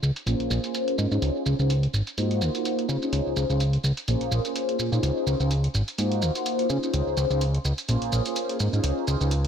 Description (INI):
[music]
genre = filtered disco house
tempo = 126 BPM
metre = 4/4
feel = swing 56% on 16ths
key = Db major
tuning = A4 = 440 Hz
[part]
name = fat analog bass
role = bass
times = 0.0-9.5 s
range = Ab1 to Db3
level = -24 LUFS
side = equal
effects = tube saturation, low-pass filter
[part]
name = electronic shaker and hi-hat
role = drums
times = 0.0-9.5 s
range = none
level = -33 LUFS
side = right 2 dB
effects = low-pass filter on hats, low-pass filter on snare, low-pass filter on cymbals, low-pass filter on perc, low-pass filter on room, tape echo
[part]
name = mellow synth brass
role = accompaniment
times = 0.3-9.3 s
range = Bb3 to C5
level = -27 LUFS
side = equal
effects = chorus, phaser, low-pass filter
[sound]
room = moderate echo chamber reverb, RT60 1.2 s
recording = echo-heavy mix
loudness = -23 LUFS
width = side -8 dB against mid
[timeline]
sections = 0.0-9.5 A section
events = filter sweep 0.0-9.5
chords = 0.3 Bbm9; 1.2 Dbmaj7; 1.9 Ab13; 2.9 Dbmaj7; 4.1 Bbm9; 5.0 Dbmaj7; 5.7 Ab13; 6.7 Dbmaj7; 7.9 Bbm9; 8.8 Dbmaj7